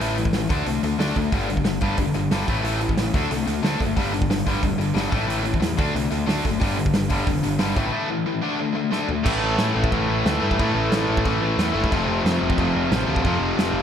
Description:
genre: punk rock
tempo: 181 BPM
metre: 4/4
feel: straight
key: A minor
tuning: A4 = 440 Hz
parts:
  - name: tight distorted guitar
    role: riff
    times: 0.0-13.8 s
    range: F2 to D4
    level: -24 LUFS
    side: left 8 dB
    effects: distortion
  - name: tight distorted guitar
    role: riff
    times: 0.0-13.8 s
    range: F2 to D4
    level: -27 LUFS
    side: right 8 dB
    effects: distortion
  - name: growling picked electric bass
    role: bass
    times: 0.0-13.8 s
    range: F1 to A2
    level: -27 LUFS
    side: right 1 dB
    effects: overdrive
  - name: loose indie drum kit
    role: drums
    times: 0.0-13.7 s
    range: crash cymbal, hi-hat, kick drum, snare drum, toms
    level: -25 LUFS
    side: right 1 dB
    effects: none
  - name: biting overdriven guitar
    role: riff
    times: 9.2-13.8 s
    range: F2 to A3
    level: -26 LUFS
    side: equal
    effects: none
room: moderate concert hall reverb, RT60 2.4 s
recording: none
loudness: -20 LUFS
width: side -8 dB against mid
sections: 0.0-9.3 A section; 9.3-13.8 B section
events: break 7.9-9.3; drum fill 8.9-9.3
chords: 0.5 D5; 1.3 G5; 2.5 A5; 3.1 D5; 4.0 G5; 5.1 A5; 5.8 D5; 6.6 G5; 7.8 A5; 8.4 D5; 9.3 A5; 11.9 F

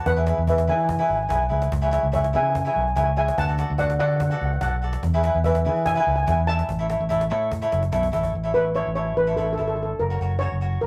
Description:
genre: calypso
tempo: 145 BPM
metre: 4/4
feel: straight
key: A major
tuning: A4 = 439 Hz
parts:
  - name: steel pan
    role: melody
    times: 0.0-10.9 s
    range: A4 to A5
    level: -26 LUFS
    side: equal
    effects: none
  - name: cavaquinho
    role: accompaniment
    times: 0.0-10.8 s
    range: E4 to D5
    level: -28 LUFS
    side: equal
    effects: none
  - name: fingered electric bass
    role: bass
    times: 0.1-10.9 s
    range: F#1 to E3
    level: -27 LUFS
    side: equal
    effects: none
  - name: cajon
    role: drums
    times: 0.1-8.3 s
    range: none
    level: -35 LUFS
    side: equal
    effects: none
room: moderate studio reverb, RT60 0.6 s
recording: rough rehearsal-room recording, tube saturation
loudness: -23 LUFS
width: mono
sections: 0.0-8.3 A section; 8.3-10.9 B section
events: drum fill 7.5-8.3; steel pan solo 8.3-10.9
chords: 0.1 Eadd9; 1.7 C#m; 3.4 D; 5.0 E; 6.7 A; 10.0 F#

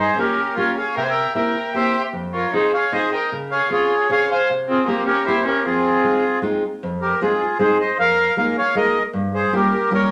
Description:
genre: musette waltz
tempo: 154 BPM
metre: 3/4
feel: straight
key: F minor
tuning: A4 = 442 Hz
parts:
  - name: accordion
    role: melody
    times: 0.0-10.1 s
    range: C4 to Ab5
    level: -21 LUFS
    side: equal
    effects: none
  - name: rich violin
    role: second line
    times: 0.0-6.4 s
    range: Bb3 to C5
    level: -26 LUFS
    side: equal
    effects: none
  - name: fingerpicked steel-string acoustic guitar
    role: accompaniment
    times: 0.0-10.1 s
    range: F2 to Ab4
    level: -25 LUFS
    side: equal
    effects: none
room: wet large studio reverb, RT60 0.8 s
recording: none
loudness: -19 LUFS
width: mono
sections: 0.0-6.8 A section; 6.8-10.1 A section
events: none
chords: 0.0 Gm7b5; 1.0 C7; 2.1 Fm7; 3.3 Dbmaj7; 4.5 C7sus4; 5.3 C7; 5.6 Fm7; 8.0 Bb7sus4/F; 9.1 Gm7b5

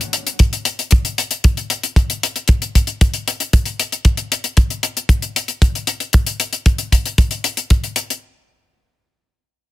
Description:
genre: nu-disco, nu disco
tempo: 115 BPM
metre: 4/4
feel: straight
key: none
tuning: none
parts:
  - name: hi-hat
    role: drums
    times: 0.0-8.2 s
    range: none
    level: -20 LUFS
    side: left 5 dB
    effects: small room ambience
  - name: kick drum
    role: drums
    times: 0.4-7.8 s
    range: none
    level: -14 LUFS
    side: equal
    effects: small room ambience
room: studio ambience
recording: dense, heavily limited modern master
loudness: -15 LUFS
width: side -15 dB against mid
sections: 0.0-8.2 A section; 8.2-9.7 B section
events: none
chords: none

